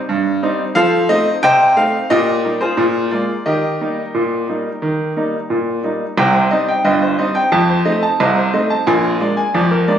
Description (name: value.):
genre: ragtime piano.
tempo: 89 BPM.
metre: 2/4.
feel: straight.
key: Eb major.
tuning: A4 = 439 Hz.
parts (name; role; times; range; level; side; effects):
clear upright piano; solo; 0.1-10.0 s; G1 to A5; -14 LUFS; equal; none.
room: moderate studio reverb, RT60 0.6 s.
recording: recorded on a phone in the room, studio reverb.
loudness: -14 LUFS.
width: side -9 dB against mid.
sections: 0.0-6.2 A section; 6.2-10.0 B section.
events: none.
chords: 0.0 Cm; 0.8 F7; 2.1 Eb/Bb; 2.8 Bb7; 3.5 Eb; 6.2 Cm; 7.5 F7; 8.9 Bb7.